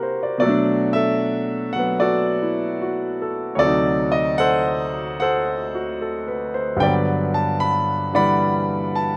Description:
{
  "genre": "solo jazz",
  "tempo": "75 BPM",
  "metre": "4/4",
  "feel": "swing 69% on 8ths",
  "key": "unclear",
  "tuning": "A4 = 440 Hz",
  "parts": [
    { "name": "clear concert grand piano", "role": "solo", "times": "0.0-9.2 s", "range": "D2 to B5", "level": "-21 LUFS", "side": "equal", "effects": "none" }
  ],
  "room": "little or no reverb",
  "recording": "recorded outdoors, with no room sound",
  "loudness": "-21 LUFS",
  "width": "mono",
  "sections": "0.0-9.2 A section",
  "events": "none",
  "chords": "0.4 Bm7; 3.6 D7b9; 6.8 Gmaj7"
}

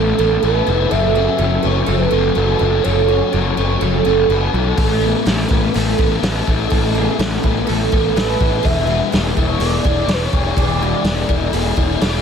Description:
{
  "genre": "rock, shoegaze and dream pop",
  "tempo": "124 BPM",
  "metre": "4/4",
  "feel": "straight",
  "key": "A major",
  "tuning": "A4 = 440 Hz",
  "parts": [
    { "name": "mellow horn-like synth lead", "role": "melody", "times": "0.0-4.3, 8.2-12.2 s", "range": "A4 to E5", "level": "-22 LUFS", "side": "right 2 dB", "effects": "chorus, phaser, ping-pong delay" },
    { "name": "picked twelve-string acoustic guitar", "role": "arpeggios", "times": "0.0-12.2 s", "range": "F#4 to B4", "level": "-22 LUFS", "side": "right 8 dB", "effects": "analog chorus, ping-pong delay" },
    { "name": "biting overdriven guitar", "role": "riff", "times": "0.0-12.2 s", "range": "E3 to D5", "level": "-20 LUFS", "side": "left 9 dB", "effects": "ensemble chorus" },
    { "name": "direct-recorded clean electric guitar", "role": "riff", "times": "0.0-12.2 s", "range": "E2 to F#4", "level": "-30 LUFS", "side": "right 11 dB", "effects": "reverse reverb" },
    { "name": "fuzz picked electric bass", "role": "bass", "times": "0.0-12.2 s", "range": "E1 to B1", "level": "-19 LUFS", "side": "equal", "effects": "overdrive" },
    { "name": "loose indie drum kit", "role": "drums", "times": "4.8-12.1 s", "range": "hi-hat, kick drum, snare drum", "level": "-20 LUFS", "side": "equal", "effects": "none" }
  ],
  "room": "moderate plate reverb, RT60 1.3 s, small room ambience",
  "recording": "dreamy mix soaked in reverb",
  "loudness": "-14 LUFS",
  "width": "side -7 dB against mid",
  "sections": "0.0-12.2 A section",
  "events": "none",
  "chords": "0.0 Asus2; 0.9 F#m; 4.8 Asus2; 8.6 E7"
}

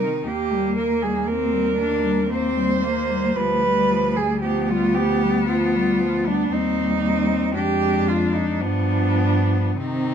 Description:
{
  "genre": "classical, lyrical piece for cello ensemble",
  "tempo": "57 BPM",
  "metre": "3/4",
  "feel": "uneven beats, rubato",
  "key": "unclear",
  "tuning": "A4 = 439 Hz",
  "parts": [
    { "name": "muted cello", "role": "melody", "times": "0.0-10.1 s", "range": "G3 to Eb4", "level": "-26 LUFS", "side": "left 8 dB", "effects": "none" },
    { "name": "muted cello", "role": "second line", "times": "0.0-10.1 s", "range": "C4 to C5", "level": "-23 LUFS", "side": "right 5 dB", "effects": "none" },
    { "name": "muted cello", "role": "accompaniment", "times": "0.0-10.1 s", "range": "Eb3 to Bb3", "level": "-26 LUFS", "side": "left 4 dB", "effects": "none" },
    { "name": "muted cello", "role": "bass", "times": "0.0-10.1 s", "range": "D2 to C3", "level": "-24 LUFS", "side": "right 1 dB", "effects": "none" }
  ],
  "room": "light reverb",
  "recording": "minimal, uncompressed stereo recording",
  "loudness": "-18 LUFS",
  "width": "side -8 dB against mid",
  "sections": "0.0-10.1 A section",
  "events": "none",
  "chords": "0.3 Eb; 3.4 G7/D; 6.5 Cm/Eb; 7.5 Ddim/F; 8.6 G7"
}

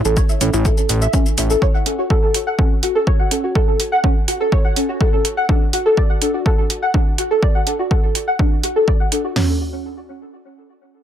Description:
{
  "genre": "melodic techno",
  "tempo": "124 BPM",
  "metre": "4/4",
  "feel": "straight",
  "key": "unclear",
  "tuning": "A4 = 440 Hz",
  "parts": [
    { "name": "soft round pluck", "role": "arpeggios", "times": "0.1-9.6 s", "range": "C#4 to F#5", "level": "-19 LUFS", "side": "equal", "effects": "ensemble chorus, sidechain pumping, tape echo" },
    { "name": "fat analog bass", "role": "bass", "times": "0.1-1.6 s", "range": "A1", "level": "-18 LUFS", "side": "equal", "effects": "sidechain pumping" },
    { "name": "electronic shaker and hi-hat", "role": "drums", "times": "0.1-9.2 s", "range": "none", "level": "-22 LUFS", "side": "right 2 dB", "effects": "none" },
    { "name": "punchy analog drum machine", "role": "drums", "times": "0.2-9.5 s", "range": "hi-hat, kick drum, snare drum, toms", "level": "-16 LUFS", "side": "equal", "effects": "overdrive" }
  ],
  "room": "light reverb",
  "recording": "echo-heavy mix",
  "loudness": "-15 LUFS",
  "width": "side -10 dB against mid",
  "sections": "0.0-9.4 A section; 9.4-11.0 B section",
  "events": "none",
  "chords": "0.0 A; 1.6 F#m; 5.5 D; 9.4 N.C."
}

